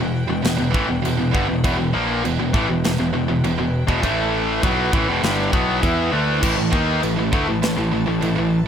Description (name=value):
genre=heavy metal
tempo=100 BPM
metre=4/4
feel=straight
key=E minor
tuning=A4 = 442 Hz
part: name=warm studio string section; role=sustained chords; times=0.0-8.7 s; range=A3 to A5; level=-30 LUFS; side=right 1 dB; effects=none
part: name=tight distorted guitar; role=riff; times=0.0-8.6 s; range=E2 to E4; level=-22 LUFS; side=left 9 dB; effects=distortion
part: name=tight distorted guitar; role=riff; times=0.0-8.6 s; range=E2 to E4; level=-22 LUFS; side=right 9 dB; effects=distortion
part: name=growling picked electric bass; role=bass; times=0.0-8.6 s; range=E1 to E2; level=-25 LUFS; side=equal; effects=overdrive
part: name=modern studio drum kit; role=drums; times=0.4-8.4 s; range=china cymbal, crash cymbal, kick drum, snare drum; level=-25 LUFS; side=equal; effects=none
room=studio ambience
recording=none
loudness=-17 LUFS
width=side -8 dB against mid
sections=0.0-8.7 A section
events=none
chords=0.0 Em; 4.0 A5; 4.6 Em; 6.4 A5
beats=0.44 1.04 | 1.64 2.23 2.83 3.43 | 4.03 4.62 5.22 5.82 | 6.42 7.01 7.61 8.21